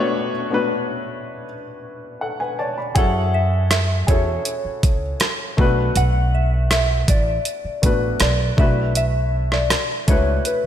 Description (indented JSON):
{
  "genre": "contemporary R&B",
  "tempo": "80 BPM",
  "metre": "4/4",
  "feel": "straight",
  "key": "F# minor",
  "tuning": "A4 = 439 Hz",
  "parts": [
    { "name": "dark baby grand piano", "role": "accompaniment", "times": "0.0-10.7 s", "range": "A3 to B5", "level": "-24 LUFS", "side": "left 3 dB", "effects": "none" },
    { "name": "soft synth bell", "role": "melody", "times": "3.0-10.7 s", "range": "B4 to F#5", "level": "-24 LUFS", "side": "equal", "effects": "chorus, phaser, ping-pong delay" },
    { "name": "upright bass", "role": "bass", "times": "3.0-10.4 s", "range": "A1 to F#2", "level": "-20 LUFS", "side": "right 1 dB", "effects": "none" },
    { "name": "detuned 8-bit digital drum machine", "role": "drums", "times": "3.0-10.6 s", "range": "hi-hat, kick drum, rim click", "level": "-19 LUFS", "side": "right 1 dB", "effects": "none" }
  ],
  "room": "moderate lush hall reverb, RT60 2.0 s",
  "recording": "dreamy mix soaked in reverb",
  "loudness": "-17 LUFS",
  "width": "side -10 dB against mid",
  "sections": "0.0-3.0 A section; 3.0-10.7 B section",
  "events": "break 0.0-3.0; grand piano fill 1.8-3.0",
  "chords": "0.0 Bm7; 3.0 F#m9; 5.6 Bm7; 8.6 E9sus4/B",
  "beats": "0.71 1.46 2.21 | 2.96 3.71 4.46 5.21 | 5.96 6.71 7.46 8.21 | 8.96 9.71 10.46"
}